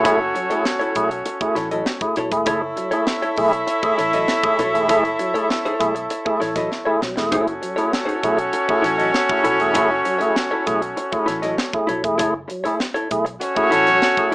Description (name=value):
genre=funk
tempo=99 BPM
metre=4/4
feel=straight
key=F# minor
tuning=A4 = 440 Hz
part: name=clear horn section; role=second line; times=0.0-14.3 s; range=C#4 to E5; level=-20 LUFS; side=equal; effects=none
part: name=vintage hollow-body jazz guitar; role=accompaniment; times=0.0-14.3 s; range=E4 to D#5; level=-24 LUFS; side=left 1 dB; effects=none
part: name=tonewheel organ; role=stabs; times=0.0-14.3 s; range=F#3 to G#4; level=-21 LUFS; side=equal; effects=slow rotary speaker
part: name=vintage muted fingered electric bass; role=bass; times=0.0-14.0 s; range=E1 to B1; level=-36 LUFS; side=equal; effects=none
part: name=crisp fusion drum kit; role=drums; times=0.1-14.3 s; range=hi-hat, kick drum, snare drum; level=-26 LUFS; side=equal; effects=none
room=moderate studio reverb, RT60 0.6 s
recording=rough home demo mix, small speaker sound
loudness=-17 LUFS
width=side -22 dB against mid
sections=0.0-14.3 A section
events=drum fill 6.7-7.3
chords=0.0 F#m7